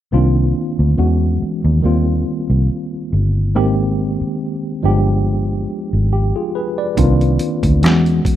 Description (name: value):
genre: R&B, neo-soul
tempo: 70 BPM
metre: 4/4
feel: swing 53% on 16ths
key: unclear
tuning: A4 = 440 Hz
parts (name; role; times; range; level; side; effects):
- tine electric piano; accompaniment; 0.1-8.4 s; Eb3 to D5; -18 LUFS; equal; overdrive, fast stereo tremolo
- vintage muted fingered electric bass; bass; 0.1-8.3 s; G1 to E2; -15 LUFS; equal; none
- boom bap sampler-style drum kit; drums; 7.0-8.4 s; hi-hat, kick drum, snare drum; -19 LUFS; equal; none
room: little or no reverb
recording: rough home demo mix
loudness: -14 LUFS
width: side -12 dB against mid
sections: 0.1-8.4 A section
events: none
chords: 0.1 Cm11; 1.0 E69; 1.8 Eb69; 3.5 Abmaj9; 4.8 G7b9; 7.0 Cm11; 7.8 E69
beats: | 0.12 0.98 1.83 2.69 | 3.55 4.41 5.26 6.12 | 6.98 7.83